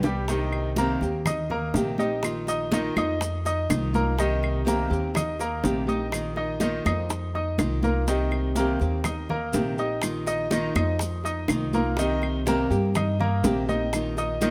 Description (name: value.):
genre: latin, Cuban son and guajira.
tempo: 123 BPM.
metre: 4/4.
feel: straight.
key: C minor.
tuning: A4 = 440 Hz.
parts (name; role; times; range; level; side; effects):
nylon-string guitar; accompaniment; 0.0-14.5 s; C3 to G4; -31 LUFS; equal; none.
bright grand piano; arpeggios; 0.0-14.5 s; Eb3 to Eb6; -31 LUFS; equal; none.
upright bass; bass; 0.0-14.5 s; Bb1 to G2; -31 LUFS; equal; none.
bongos; percussion; 0.0-14.5 s; none; -34 LUFS; equal; none.
congas; percussion; 0.0-14.5 s; none; -33 LUFS; equal; none.
maracas; percussion; 0.0-14.5 s; none; -40 LUFS; equal; none.
claves; percussion; 0.5-14.2 s; none; -36 LUFS; equal; none.
room: moderate plate reverb, RT60 3.1 s.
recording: none.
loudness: -25 LUFS.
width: mono.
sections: 0.3-14.5 A section.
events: drum fill 0.0.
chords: 0.3 Cm7; 2.2 Bbsus4; 4.2 Cm7; 6.1 Bbsus4; 8.1 Cm7; 10.0 Bbsus4; 12.0 Cm7; 13.9 Bbsus4.